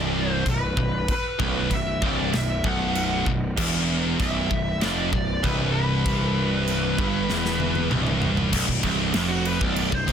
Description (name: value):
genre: heavy metal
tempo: 97 BPM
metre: 4/4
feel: straight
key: B phrygian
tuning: A4 = 441 Hz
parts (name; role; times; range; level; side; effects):
- high-gain lead guitar; melody; 0.0-10.1 s; F#4 to F#5; -29 LUFS; left 1 dB; distortion, digital delay
- cranked stack guitar; riff; 0.0-10.1 s; B1 to G2; -30 LUFS; equal; overdrive
- heavy high-gain guitar; riff; 0.0-10.1 s; B1 to G2; -29 LUFS; left 10 dB; distortion
- high-gain distorted guitar; riff; 0.0-10.1 s; B1 to G2; -27 LUFS; right 10 dB; distortion
- fuzz picked electric bass; bass; 0.0-10.1 s; B0 to G1; -28 LUFS; left 1 dB; overdrive
- modern studio drum kit; drums; 0.5-10.1 s; china cymbal, crash cymbal, kick drum, snare drum, toms; -28 LUFS; equal; none
room: light reverb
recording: dense, heavily limited modern master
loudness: -21 LUFS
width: side -8 dB against mid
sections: 0.0-8.5 A section; 8.5-10.1 B section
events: half time 0.0-8.5; drum fill 7.3-8.5; lead electric guitar solo 8.5-10.1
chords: none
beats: 0.46 | 1.09 1.71 2.33 2.95 | 3.57 4.20 4.82 5.44 | 6.06 6.67 7.29 7.91 | 8.53 9.15 9.77